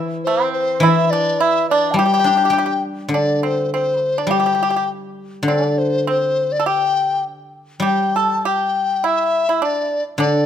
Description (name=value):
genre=chinese traditional, Chinese chamber ensemble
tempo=102 BPM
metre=2/4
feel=rubato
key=G zhi mode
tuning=A4 = 439 Hz
part: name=guzheng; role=accompaniment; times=0.0-10.5 s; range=D3 to G4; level=-21 LUFS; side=left 1 dB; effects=none
part: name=mellow hollow large dizi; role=melody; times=0.2-10.5 s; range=C5 to A5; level=-18 LUFS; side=left 4 dB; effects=none
part: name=pipa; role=second line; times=0.3-10.5 s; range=C4 to A4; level=-21 LUFS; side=right 7 dB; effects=none
room=light reverb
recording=close, detailed microphones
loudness=-15 LUFS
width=side -9 dB against mid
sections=0.0-3.1 A section; 3.1-10.5 B section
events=none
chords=none